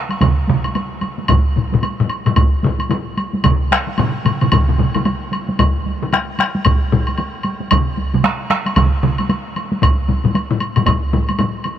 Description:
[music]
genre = japanese traditional, taiko drum ensemble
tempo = 113 BPM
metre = 4/4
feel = swing 60% on 16ths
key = none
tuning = none
[part]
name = taiko ensemble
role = percussion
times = 0.1-11.8 s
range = none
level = -22 LUFS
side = equal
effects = none
[part]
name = woodblock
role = percussion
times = 0.1-11.8 s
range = none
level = -23 LUFS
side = left 1 dB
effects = none
[part]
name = taiko ensemble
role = percussion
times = 0.2-9.2 s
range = none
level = -20 LUFS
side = right 4 dB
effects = none
[part]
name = taiko ensemble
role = percussion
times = 0.2-11.0 s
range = none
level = -18 LUFS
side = right 1 dB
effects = none
[part]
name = taiko ensemble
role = percussion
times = 1.3-11.5 s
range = none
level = -19 LUFS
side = left 5 dB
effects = none
[sound]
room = light reverb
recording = none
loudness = -14 LUFS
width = side -10 dB against mid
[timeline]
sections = 0.0-11.8 A section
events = speeding up 0.0-11.8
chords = none

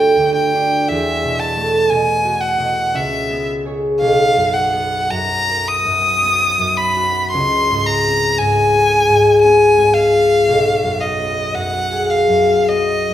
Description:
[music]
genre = classical, impressionist duo for violin and harp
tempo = 56 BPM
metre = 3/4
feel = uneven beats, rubato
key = unclear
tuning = A4 = 440 Hz
[part]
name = clear violin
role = melody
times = 0.0-13.1 s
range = Eb5 to Eb6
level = -16 LUFS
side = equal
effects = none
[part]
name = concert harp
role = accompaniment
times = 0.0-13.1 s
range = G1 to C#5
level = -16 LUFS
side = left 1 dB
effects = none
[sound]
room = wet recital hall reverb, RT60 1.4 s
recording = recorded in a church or concert hall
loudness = -13 LUFS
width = side -11 dB against mid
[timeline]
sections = 0.0-13.1 A section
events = none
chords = 0.0 Gsus2; 0.9 E9sus4; 2.9 C#m7; 4.0 Cbmaj7; 7.3 Dbmaj7(no3); 10.5 Cb5

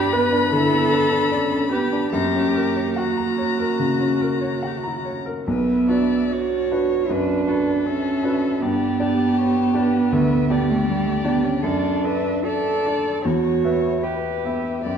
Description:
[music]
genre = classical, slow romantic movement for piano quartet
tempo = 69-81 BPM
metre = 4/4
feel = rubato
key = B minor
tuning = A4 = 436 Hz
[part]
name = muted violin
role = melody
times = 0.0-15.0 s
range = G4 to B5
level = -27 LUFS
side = left 8 dB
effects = none
[part]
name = muted cello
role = second line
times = 0.0-15.0 s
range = G3 to A4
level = -22 LUFS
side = right 4 dB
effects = none
[part]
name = bright grand piano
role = accompaniment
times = 0.0-15.0 s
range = B1 to B5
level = -23 LUFS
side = left 2 dB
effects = none
[part]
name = muted viola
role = accompaniment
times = 0.0-15.0 s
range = E4 to E5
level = -27 LUFS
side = right 2 dB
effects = none
[sound]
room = wet recital hall reverb, RT60 1.6 s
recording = dark, warm production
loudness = -18 LUFS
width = side -7 dB against mid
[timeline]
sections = 0.0-5.5 A section; 5.5-15.0 B section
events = none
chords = 0.0 G; 2.1 F#; 5.5 Bm; 8.6 G; 11.6 D/F#; 13.2 Em

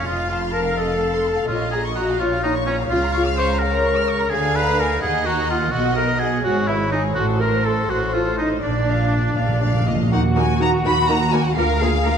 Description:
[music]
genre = quick classical-period movement for symphony orchestra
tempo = 84 BPM (dotted quarters)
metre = 6/8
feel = straight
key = Bb minor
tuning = A4 = 439 Hz
[part]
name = rich studio violin section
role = melody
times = 0.0-12.2 s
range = G#4 to F6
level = -26 LUFS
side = left 3 dB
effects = none
[part]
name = clear oboe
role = second line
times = 0.0-9.8 s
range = Db4 to C5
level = -24 LUFS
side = equal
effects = none
[part]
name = rich studio violin section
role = second line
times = 0.0-12.1 s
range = Gb4 to F5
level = -28 LUFS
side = left 3 dB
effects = none
[part]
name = rich studio viola section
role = accompaniment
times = 0.0-12.1 s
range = Bb3 to C5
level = -24 LUFS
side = left 2 dB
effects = none
[part]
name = bright studio double bass section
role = bass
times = 0.0-12.2 s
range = F1 to Eb2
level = -24 LUFS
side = right 3 dB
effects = none
[part]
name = rich studio cello section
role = bass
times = 0.1-12.2 s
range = F2 to Bb4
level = -26 LUFS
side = right 2 dB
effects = none
[part]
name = timpani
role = percussion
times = 1.5-2.2, 8.6-10.1 s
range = Bb2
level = -24 LUFS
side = equal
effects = none
[sound]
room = wet scoring stage reverb, RT60 1.9 s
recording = dark, warm production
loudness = -17 LUFS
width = side -7 dB against mid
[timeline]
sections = 0.0-10.1 A section; 10.1-12.2 B section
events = timpani fill 8.6-10.1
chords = 0.1 F; 1.5 Bbm; 2.9 Bbm/Db; 4.3 Bb7/D; 5.0 Ebm; 5.7 B; 6.5 E69/G#; 7.2 Adim7; 8.6 Bb; 10.1 Ebm; 11.6 Bb/D

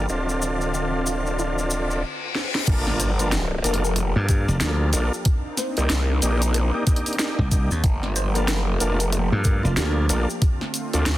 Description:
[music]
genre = glitch hop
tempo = 93 BPM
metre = 4/4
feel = swing 60% on 16ths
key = G minor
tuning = A4 = 445 Hz
[part]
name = warm analog pad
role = sustained chords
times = 0.0-11.2 s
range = D3 to A4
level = -31 LUFS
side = equal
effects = chorus, tremolo, vintage 12-bit sampler grit, sidechain pumping
[part]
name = tonewheel organ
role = stabs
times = 0.0-11.1 s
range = Bb3 to A4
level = -28 LUFS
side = equal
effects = chorus vibrato, vintage 12-bit sampler grit, sidechain pumping, low-pass filter, digital delay
[part]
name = growl bass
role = bass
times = 0.0-11.2 s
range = D1 to D2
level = -23 LUFS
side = equal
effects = chorus, overdrive
[part]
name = tube shaker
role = percussion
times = 0.1-11.2 s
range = none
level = -32 LUFS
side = left 2 dB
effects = none
[part]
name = woody wave-folded pluck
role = melody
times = 1.1-10.0 s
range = F4 to D5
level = -34 LUFS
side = left 2 dB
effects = lush chorus, digital delay
[part]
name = reverse cymbal and impact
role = sound effects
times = 1.8-5.3 s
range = none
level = -30 LUFS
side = left 2 dB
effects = none
[part]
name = drum and bass drum kit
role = drums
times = 2.4-11.2 s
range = crash cymbal, hi-hat, snare drum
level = -27 LUFS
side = equal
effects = overdrive
[part]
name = electronic kick drum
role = drums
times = 2.7-10.6 s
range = none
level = -20 LUFS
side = equal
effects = none
[part]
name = slap bass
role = bass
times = 4.2-10.1 s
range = F1 to G2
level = -21 LUFS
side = equal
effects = none
[sound]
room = little or no reverb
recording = dense, heavily limited modern master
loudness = -20 LUFS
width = side -15 dB against mid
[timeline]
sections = 0.0-2.7 A section; 2.7-11.2 B section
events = reverse cymbal 1.8-2.7; drum fill 2.4-2.7; drop 2.7-11.2; impact 2.7-5.3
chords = 0.1 Dm7; 2.7 Gm9; 5.3 Cm9; 7.8 Gm9; 10.4 Dm7

